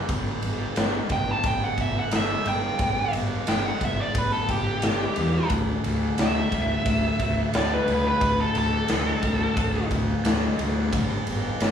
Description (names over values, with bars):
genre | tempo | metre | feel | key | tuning
blues rock power trio and southern rock | 89 BPM | 4/4 | straight | D major | A4 = 440 Hz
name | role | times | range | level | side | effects
fuzz fingered electric bass | bass | 0.1-11.7 s | G1 to E2 | -26 LUFS | left 1 dB | overdrive
big rock drum kit | drums | 0.1-11.7 s | kick drum, ride cymbal, snare drum | -26 LUFS | equal | none
nasal lead guitar with a parked wah | second line | 1.1-9.9 s | G4 to A5 | -26 LUFS | right 1 dB | overdrive, slapback echo
room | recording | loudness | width
light reverb | live gig heard through the venue's PA, club reverb, studio ambience | -22 LUFS | side -8 dB against mid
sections
0.0-11.7 A section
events
lead electric guitar solo 0.0-11.7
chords
0.1 N.C.; 5.5 D5; 10.9 N.C.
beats
| 0.09 0.77 1.45 2.12 | 2.80 3.48 4.15 4.83 | 5.51 6.19 6.86 7.54 | 8.22 8.89 9.57 10.25 | 10.93 11.60